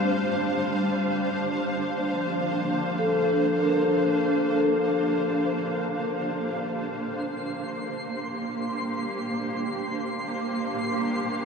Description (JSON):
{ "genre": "ambient", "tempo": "free time", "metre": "none", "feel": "none", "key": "unclear", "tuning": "A4 = 439 Hz", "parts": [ { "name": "granular cloud pad", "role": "sustained chords", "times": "0.0-11.4 s", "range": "G3 to F5", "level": "-26 LUFS", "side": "right 1 dB", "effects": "built-in reverb, shimmer reverb" }, { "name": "vibraphone with soft mallets", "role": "arpeggios", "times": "0.0-7.0 s", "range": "F3 to C6", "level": "-27 LUFS", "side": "left 1 dB", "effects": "tape echo, shimmer reverb" }, { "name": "twinkling granular texture", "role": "texture", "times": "7.2-11.4 s", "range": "C6 to C7", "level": "-34 LUFS", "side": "left 1 dB", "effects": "built-in reverb, shimmer reverb" } ], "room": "wet huge ambient reverb, RT60 8.0 s", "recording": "worn, warbling old tape, cassette tape, warbly pitch drift, studio ambience", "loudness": "-24 LUFS", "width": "side -5 dB against mid", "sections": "0.0-7.0 A section; 7.0-11.4 B section", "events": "none", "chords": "0.0 Fadd9; 0.8 Gm11; 7.0 Gm7" }